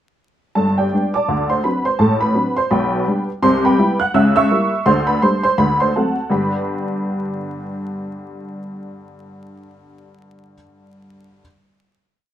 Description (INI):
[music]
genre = jazz, stride piano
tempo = 167 BPM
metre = 4/4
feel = swing 61% on 8ths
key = G major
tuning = A4 = 441 Hz
[part]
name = honky-tonk upright piano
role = solo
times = 0.6-11.4 s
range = G1 to F#6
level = -16 LUFS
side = equal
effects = none
[sound]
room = moderate studio reverb, RT60 0.7 s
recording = minimal, uncompressed stereo recording, vinyl crackle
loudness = -15 LUFS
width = side -11 dB against mid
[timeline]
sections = 0.6-6.3 A section; 6.3-9.2 final chord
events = none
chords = 0.6 G; 1.3 D7; 2.0 D7/A; 2.7 G/B; 3.4 Cmaj7; 4.1 C#dim7; 4.9 D7sus4; 5.6 D7; 6.3 G